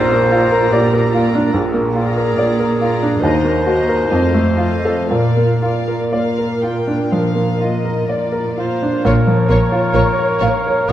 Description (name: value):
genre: classical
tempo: 55-75 BPM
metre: 4/4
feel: rubato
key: Bb major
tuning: A4 = 440 Hz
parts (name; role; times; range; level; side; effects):
- bright baby grand piano; melody; 0.0-10.9 s; Bb1 to F5; -16 LUFS; equal; none
- warm clarinet; second line; 0.0-8.6 s; G4 to C5; -21 LUFS; equal; none
- warm studio violin section; second line; 0.0-10.9 s; Bb3 to Bb5; -26 LUFS; left 2 dB; none
- dark symphonic viola section; accompaniment; 0.0-10.9 s; A3 to Db5; -24 LUFS; right 2 dB; none
- warm studio cello section; bass; 0.0-10.9 s; Eb2 to Bb2; -22 LUFS; right 3 dB; none
- mellow cor anglais; second line; 8.6-10.9 s; Bb4 to C5; -20 LUFS; right 1 dB; none
- rich studio violin section; melody; 9.1-10.9 s; Db5; -25 LUFS; left 4 dB; none
- dark symphonic double bass section; bass; 9.1-10.9 s; Bb1; -20 LUFS; right 2 dB; none
room: moderate concert hall reverb, RT60 2.2 s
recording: dark, warm production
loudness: -13 LUFS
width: side -12 dB against mid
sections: 0.0-9.1 A section; 9.1-10.9 B section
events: none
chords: 0.0 Bb; 3.2 Ebm; 4.1 F7; 5.1 Bb; 9.1 Bbm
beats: 0.72 | 1.53 2.37 3.21 4.10 | 5.09 6.14 7.13 8.10 | 9.06 9.94 10.89